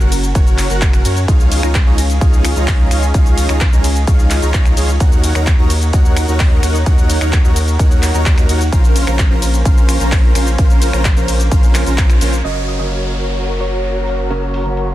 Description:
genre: EDM, festival progressive house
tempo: 129 BPM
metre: 4/4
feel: straight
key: unclear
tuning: A4 = 440 Hz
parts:
  - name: lush unison pad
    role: sustained chords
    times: 0.0-14.9 s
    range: Bb3 to C6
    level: -25 LUFS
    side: equal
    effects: chorus, phaser, sidechain pumping
  - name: dense compressed supersaw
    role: riff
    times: 0.0-14.9 s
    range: Db4 to Bb5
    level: -21 LUFS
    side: equal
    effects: sidechain pumping, low-pass filter, tape echo
  - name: saturated sub bass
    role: bass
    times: 0.0-14.9 s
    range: Gb1 to Gb2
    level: -16 LUFS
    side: equal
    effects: sidechain pumping
  - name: big-room dance drum kit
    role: drums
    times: 0.0-14.9 s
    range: finger snaps, handclaps, hi-hat, ride cymbal, shaker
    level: -22 LUFS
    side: left 1 dB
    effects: low-pass filter on hats, studio reverb, low-pass filter on perc, low-pass filter on snare, low-pass filter on toms, low-pass filter on cymbals
  - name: electronic kick drum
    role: drums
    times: 0.4-12.1 s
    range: none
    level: -12 LUFS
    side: equal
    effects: studio reverb
  - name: thumb-piano-like synth pluck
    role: melody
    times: 12.4-14.5 s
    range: Bb4 to Eb5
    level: -26 LUFS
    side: right 2 dB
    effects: wide subtle chorus, tape echo
  - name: warm concert grand piano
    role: accompaniment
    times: 12.4-14.9 s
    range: Db3 to Db4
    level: -25 LUFS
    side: equal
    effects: sidechain pumping
  - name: downlifter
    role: sound effects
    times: 12.4-14.9 s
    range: none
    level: -28 LUFS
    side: equal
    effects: none
room: little or no reverb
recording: dense, heavily limited modern master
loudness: -11 LUFS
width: side -14 dB against mid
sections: 0.0-12.4 A section; 12.4-14.9 B section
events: drop 0.0-12.4; band accent 12.0; filter sweep on supersaw synth 12.4-14.9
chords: 0.0 Gb; 1.3 Dbadd9; 5.0 Ebm7; 8.7 Bbmadd9; 12.4 Gb

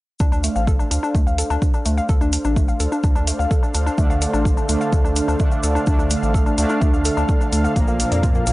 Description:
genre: melodic techno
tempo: 127 BPM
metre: 4/4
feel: straight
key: D minor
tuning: A4 = 440 Hz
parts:
  - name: lush unison pad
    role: sustained chords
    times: 0.2-8.5 s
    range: D4 to F5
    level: -29 LUFS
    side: equal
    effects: chorus, sidechain pumping
  - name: woody wave-folded pluck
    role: arpeggios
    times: 0.2-8.5 s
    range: F3 to F5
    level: -24 LUFS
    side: left 1 dB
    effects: chorus, sidechain pumping, tape echo
  - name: round analog bass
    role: bass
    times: 0.2-8.5 s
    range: A1 to F2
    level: -22 LUFS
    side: equal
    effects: sidechain pumping
  - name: electronic kick drum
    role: drums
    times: 0.2-8.3 s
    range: none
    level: -18 LUFS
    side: equal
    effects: none
  - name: cabasa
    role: percussion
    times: 0.2-8.5 s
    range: none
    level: -33 LUFS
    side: left 2 dB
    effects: none
  - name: electronic hi-hat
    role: drums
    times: 0.4-8.5 s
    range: none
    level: -26 LUFS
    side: equal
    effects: none
  - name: analog synth brass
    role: stabs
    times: 4.0-8.5 s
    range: Bb2 to D4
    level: -23 LUFS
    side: right 2 dB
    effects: chorus, sidechain pumping, tape echo
room: little or no reverb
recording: dry, gritty hardware recording, transformer saturation, nothing above 10.8 kHz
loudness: -16 LUFS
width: side -18 dB against mid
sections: 0.2-8.5 A section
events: none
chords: 0.2 Dm7; 7.8 Bbmaj7

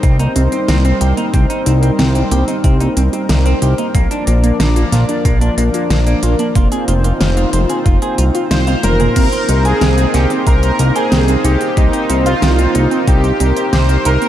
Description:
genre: synthwave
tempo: 92 BPM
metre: 4/4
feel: straight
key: C minor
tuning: A4 = 443 Hz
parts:
  - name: chorused pulse-width pad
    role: sustained chords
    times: 0.0-14.3 s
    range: F3 to D5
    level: -19 LUFS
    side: equal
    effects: sidechain pumping
  - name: warbly dusty pluck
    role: arpeggios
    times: 0.0-14.3 s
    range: Bb3 to F4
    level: -23 LUFS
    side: right 3 dB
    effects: chorus, tape echo
  - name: semi-hollow electric guitar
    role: riff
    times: 0.0-14.3 s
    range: Bb3 to C5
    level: -25 LUFS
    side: right 1 dB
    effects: wide subtle chorus, tape echo
  - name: fat analog bass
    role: bass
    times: 0.0-14.2 s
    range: F1 to C2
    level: -13 LUFS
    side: equal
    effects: none
  - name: electronic kick drum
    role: drums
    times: 0.0-13.2 s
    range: none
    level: -13 LUFS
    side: equal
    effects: overdrive
  - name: pop drum kit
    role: drums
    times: 0.0-14.3 s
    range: crash cymbal, hi-hat, snare drum, toms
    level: -21 LUFS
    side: equal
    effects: none
  - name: soft supersaw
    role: melody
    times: 8.5-14.3 s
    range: Eb4 to C5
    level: -18 LUFS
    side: right 1 dB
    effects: tape echo
  - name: soft synth bell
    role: second line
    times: 9.7-14.3 s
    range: Eb5 to C6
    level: -25 LUFS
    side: right 1 dB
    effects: chorus, phaser, tape echo
room: moderate lush hall reverb, RT60 2.5 s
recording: dreamy mix soaked in reverb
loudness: -11 LUFS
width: side -12 dB against mid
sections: 0.0-9.2 A section; 9.2-14.3 B section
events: drum fill 8.7-9.2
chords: 0.0 Cm7; 3.9 Bb; 6.6 F7sus4; 9.2 Cm7

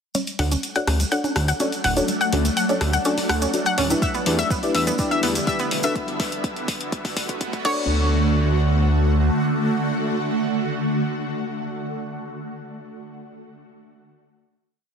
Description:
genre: progressive house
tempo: 124 BPM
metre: 4/4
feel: straight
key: D major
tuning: A4 = 442 Hz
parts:
  - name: shimmering ambient pad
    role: sustained chords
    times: 1.5-12.4 s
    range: D3 to F#4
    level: -25 LUFS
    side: right 1 dB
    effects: chorus, built-in reverb, phaser, sidechain pumping
  - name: analog pluck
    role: arpeggios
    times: 0.1-8.1 s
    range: B3 to F#5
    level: -26 LUFS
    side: equal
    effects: chorus, sidechain pumping, dub echo
  - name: house drum kit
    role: drums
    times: 0.1-7.7 s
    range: crash cymbal, hi-hat, rim click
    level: -28 LUFS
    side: left 2 dB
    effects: soft clipping on snare
  - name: congas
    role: percussion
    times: 0.1-5.9 s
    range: none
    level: -32 LUFS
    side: left 2 dB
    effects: sidechain pumping on perc
  - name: maracas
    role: percussion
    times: 0.1-5.9 s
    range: none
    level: -31 LUFS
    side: right 4 dB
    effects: none
  - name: deep mellow chord stab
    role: stabs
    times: 0.4-12.4 s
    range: D4 to E5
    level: -27 LUFS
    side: left 2 dB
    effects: chorus, cassette tape, sidechain pumping, dub echo
  - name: fat analog bass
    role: bass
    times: 0.4-9.3 s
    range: D1 to E2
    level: -21 LUFS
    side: equal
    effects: sidechain pumping
  - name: electronic kick drum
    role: drums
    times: 4.0-7.7 s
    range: none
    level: -28 LUFS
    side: equal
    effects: none
room: light reverb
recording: dense, heavily limited modern master, high-pass filter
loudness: -19 LUFS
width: side -6 dB against mid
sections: 0.1-7.9 build; 7.9-11.8 final hit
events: build-up 0.1-7.9; filter sweep on synth stab 0.1-6.0; drum fill 4.0-7.9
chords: 0.1 Dmaj7; 4.0 Em7; 6.0 Bm7; 7.7 Dmaj7

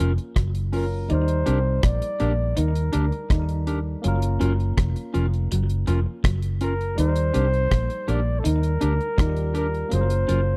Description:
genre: lovers rock reggae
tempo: 82 BPM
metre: 4/4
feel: straight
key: Eb major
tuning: A4 = 440 Hz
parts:
  - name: barky tine electric piano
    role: accompaniment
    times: 0.0-10.6 s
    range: Gb3 to D5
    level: -36 LUFS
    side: equal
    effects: overdrive, slapback echo
  - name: electric guitar through a small old amp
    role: riff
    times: 0.0-10.5 s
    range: F3 to Eb4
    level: -34 LUFS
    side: equal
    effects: slapback echo
  - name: mellow electric guitar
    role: stabs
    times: 0.0-10.4 s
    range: Db4 to Bb4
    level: -30 LUFS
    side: equal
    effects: none
  - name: vintage muted fingered electric bass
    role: bass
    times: 0.0-10.6 s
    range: F1 to Eb2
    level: -25 LUFS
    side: equal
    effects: none
  - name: deep reggae drum kit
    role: drums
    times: 0.2-10.5 s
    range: hi-hat, kick drum, rim click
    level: -26 LUFS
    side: equal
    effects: none
  - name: breathy flugelhorn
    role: melody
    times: 0.8-10.6 s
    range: A4 to D5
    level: -30 LUFS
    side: equal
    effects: tape echo
room: small room ambience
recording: dry, close 1970s-style studio recording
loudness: -23 LUFS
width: mono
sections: 0.0-10.6 A section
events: none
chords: 0.0 Gbmaj7; 1.1 Ebmaj7; 4.0 Gbmaj7; 7.0 Ebmaj7; 9.9 Gbmaj7

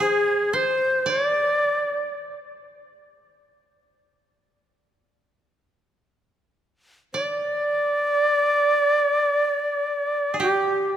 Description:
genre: japanese traditional, Japanese chamber music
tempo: free time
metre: none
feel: none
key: unclear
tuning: A4 = 440 Hz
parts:
  - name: bright reedy shakuhachi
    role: melody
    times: 0.0-11.0 s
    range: G4 to D5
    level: -20 LUFS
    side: equal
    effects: none
  - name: koto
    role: second line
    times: 0.0-11.0 s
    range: G4 to D5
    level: -28 LUFS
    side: right 4 dB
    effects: none
room: wet church reverb, RT60 2.8 s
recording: none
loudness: -20 LUFS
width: side -10 dB against mid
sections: 0.0-7.1 A section; 7.1-11.0 B section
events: none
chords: none

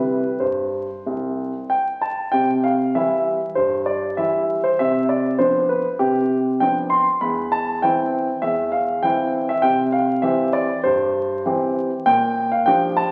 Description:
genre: classical-period piano sonatina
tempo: 99 BPM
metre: 4/4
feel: rubato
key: C major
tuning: A4 = 439 Hz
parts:
  - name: warm baby grand piano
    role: solo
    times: 0.0-13.1 s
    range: C2 to C6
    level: -20 LUFS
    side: equal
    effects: none
room: wet recital hall reverb, RT60 1.4 s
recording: very old 78 rpm record, vinyl crackle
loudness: -20 LUFS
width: mono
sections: 0.0-2.3 A section; 2.3-13.1 B section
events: none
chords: 0.0 C; 4.8 G7/C; 7.2 C/E; 9.6 C; 12.1 Gm7/Bb

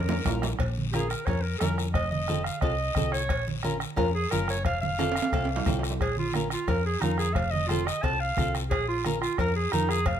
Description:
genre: latin, cumbia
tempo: 177 BPM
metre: 4/4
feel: straight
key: Bb harmonic minor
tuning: A4 = 439 Hz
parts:
  - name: clear clarinet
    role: melody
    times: 0.0-10.2 s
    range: Eb4 to A5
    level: -30 LUFS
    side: right 2 dB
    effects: none
  - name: hollow-body short-scale fingered electric bass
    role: bass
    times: 0.0-10.2 s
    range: F1 to F2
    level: -30 LUFS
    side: left 1 dB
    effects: none
  - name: flamenco guitar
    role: accompaniment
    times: 0.1-10.0 s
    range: C4 to Bb4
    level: -32 LUFS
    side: left 1 dB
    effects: none
  - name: congas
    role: percussion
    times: 0.1-9.9 s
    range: none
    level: -34 LUFS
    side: right 4 dB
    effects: none
  - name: timbales and cowbell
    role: percussion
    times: 0.1-10.2 s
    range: none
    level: -34 LUFS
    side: right 4 dB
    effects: none
  - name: bombo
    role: percussion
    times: 0.3-10.2 s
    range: none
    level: -32 LUFS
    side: left 1 dB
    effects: none
  - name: guiro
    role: percussion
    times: 0.3-10.2 s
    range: none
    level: -40 LUFS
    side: left 8 dB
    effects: none
room: light reverb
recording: close, detailed microphones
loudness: -25 LUFS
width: side -9 dB against mid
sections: 0.6-10.2 A section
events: drum fill 0.0-0.6, 5.0-6.0; clarinet solo 0.6-10.2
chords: 0.0 Bbm; 1.9 F7; 3.3 Bbm; 4.7 F; 6.0 Bbm; 7.4 F; 8.7 Bbm

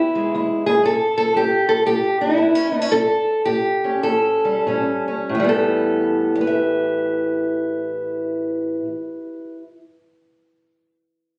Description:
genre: acoustic country blues, solo or duo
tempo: 92-118 BPM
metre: 4/4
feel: swing 63% on 8ths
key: A mixolydian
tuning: A4 = 440 Hz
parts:
  - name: fingerpicked steel-string acoustic guitar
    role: solo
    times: 0.0-9.6 s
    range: E2 to E5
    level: -20 LUFS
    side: equal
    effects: none
room: moderate small room reverb, RT60 0.5 s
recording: recorded on a phone in the room, studio reverb, compression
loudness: -20 LUFS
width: mono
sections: 0.0-5.3 A section; 5.3-10.5 B section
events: slowing down 0.8-5.3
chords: 0.0 E; 0.8 A7; 5.3 Asus2

